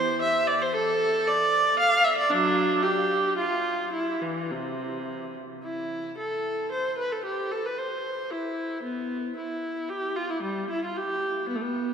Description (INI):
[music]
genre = classical, baroque-style suite movement for unaccompanied viola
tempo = 103-119 BPM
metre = 3/4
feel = rubato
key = C major, A minor from 5.7 s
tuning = A4 = 439 Hz
[part]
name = rich viola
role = solo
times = 0.0-11.9 s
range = C3 to F5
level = -24 LUFS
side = right 1 dB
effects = none
[sound]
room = wet cathedral reverb, RT60 5.9 s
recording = recorded in a church or concert hall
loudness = -24 LUFS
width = side -7 dB against mid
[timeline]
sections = 0.0-5.7 A section; 5.7-11.9 A section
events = none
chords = none